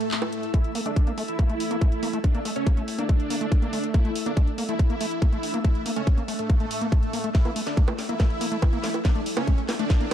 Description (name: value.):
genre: psychedelic trance.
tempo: 141 BPM.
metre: 4/4.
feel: straight.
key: unclear.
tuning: A4 = 441 Hz.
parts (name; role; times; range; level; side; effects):
dense compressed supersaw; melody; 0.0-10.1 s; A3 to E4; -31 LUFS; right 1 dB; phaser, sidechain pumping, low-pass filter, tape echo.
evolving wavetable pad; sustained chords; 0.0-10.1 s; A3 to E4; -34 LUFS; left 1 dB; ensemble chorus, built-in reverb, phaser, sidechain pumping.
garage drum kit; drums; 0.0-10.1 s; bongos, handclaps, hi-hat, snare drum; -32 LUFS; right 3 dB; high-pass filter on hats, high-pass filter on perc, high-pass filter on snare, high-pass filter on room.
swell and riser; sound effects; 0.0-0.5, 8.6-10.1 s; none; -37 LUFS; right 3 dB; none.
airy breathy pad; texture; 0.0-10.1 s; A3 to E6; -37 LUFS; equal; chorus, sidechain pumping.
overdriven acid bass; riff; 0.5-10.1 s; A3 to Bb3; -32 LUFS; moving between left 4 dB and right 2 dB; distortion, auto-pan, sidechain pumping, tape echo.
electronic kick drum; drums; 0.5-10.0 s; none; -21 LUFS; equal; none.
formant-sweep wobble bass; second line; 1.4-4.3, 8.2-9.5 s; A3 to C#4; -44 LUFS; right 2 dB; none.
room: little or no reverb.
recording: dark, warm production.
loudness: -22 LUFS.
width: side -10 dB against mid.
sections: 0.5-10.1 A section.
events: swell 0.0-0.5; build-up 0.5-10.1; filter sweep on supersaw synth 0.5-10.1; drum fill 7.3-10.1.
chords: 0.0 A5.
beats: 0.11 | 0.54 0.96 1.39 1.81 | 2.24 2.67 3.09 3.52 | 3.94 4.37 4.79 5.22 | 5.64 6.07 6.50 6.92 | 7.35 7.77 8.20 8.62 | 9.05 9.47 9.90.